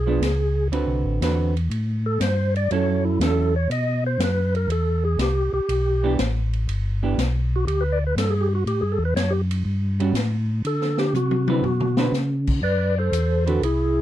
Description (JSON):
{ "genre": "soul jazz organ trio", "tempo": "121 BPM", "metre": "4/4", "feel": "swing 69% on 8ths", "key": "D mixolydian", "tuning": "A4 = 440 Hz", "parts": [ { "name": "percussive tonewheel organ", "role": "melody", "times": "0.0-14.0 s", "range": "D4 to Eb5", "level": "-24 LUFS", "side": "equal", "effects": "slow rotary speaker" }, { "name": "mellow tonewheel organ", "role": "bass", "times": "0.0-14.0 s", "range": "G1 to D3", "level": "-22 LUFS", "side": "equal", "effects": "chorus vibrato, slow rotary speaker" }, { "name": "vintage hollow-body jazz guitar", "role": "accompaniment", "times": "0.1-13.6 s", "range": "D3 to B4", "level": "-24 LUFS", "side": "right 5 dB", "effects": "none" }, { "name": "swinging big-band drum kit", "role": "drums", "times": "0.2-13.8 s", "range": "crash cymbal, hi-hat, kick drum, ride cymbal, snare drum, toms", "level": "-28 LUFS", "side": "left 2 dB", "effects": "none" } ], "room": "light reverb", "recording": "none", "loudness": "-20 LUFS", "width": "side -13 dB against mid", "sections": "0.0-12.6 A section; 12.6-14.0 B section", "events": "tonewheel organ solo 0.0-12.6; drum fill 11.1-12.1", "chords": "0.0 G#dim7; 0.7 D13; 2.7 F#m7; 3.7 B5; 4.7 Em7; 8.7 A5; 10.6 D6; 12.6 D13", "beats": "0.21 | 0.71 1.21 1.71 2.20 | 2.70 3.20 3.70 4.19 | 4.69 5.19 5.68 6.18 | 6.68 7.17 7.67 8.17 | 8.66 9.16 9.65 10.15 | 10.65 11.14 11.64 12.13 | 12.63 13.12 13.62" }